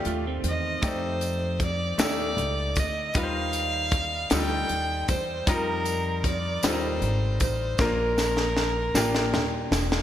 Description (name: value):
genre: slow gospel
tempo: 52 BPM (dotted quarters)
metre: 6/8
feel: straight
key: unclear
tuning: A4 = 440 Hz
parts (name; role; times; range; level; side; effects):
- clean electric guitar; second line; 0.0-0.8 s; Eb3 to F4; -34 LUFS; right 7 dB; lush chorus
- bright grand piano; accompaniment; 0.0-10.0 s; Bb2 to Eb5; -31 LUFS; left 2 dB; none
- upright bass; bass; 0.0-10.0 s; Eb1 to F2; -30 LUFS; equal; none
- tight funk drum kit; drums; 0.1-10.0 s; hi-hat, kick drum, snare drum; -27 LUFS; equal; gated reverb
- dark fiddle; melody; 0.5-9.7 s; Bb4 to G5; -29 LUFS; right 1 dB; none
- tambourine; percussion; 0.8-10.0 s; none; -39 LUFS; right 5 dB; none
room: moderate lush hall reverb, RT60 2.3 s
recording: bright 1980s-style digital production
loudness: -23 LUFS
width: side -11 dB against mid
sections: 0.0-10.0 A section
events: drum fill 7.8-10.0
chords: 0.0 F9; 0.8 F13; 3.2 Eb69; 5.5 F9sus4; 7.8 Bbmaj7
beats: | 0.83 1.99 | 3.15 4.31 | 5.48 6.64 | 7.80 8.96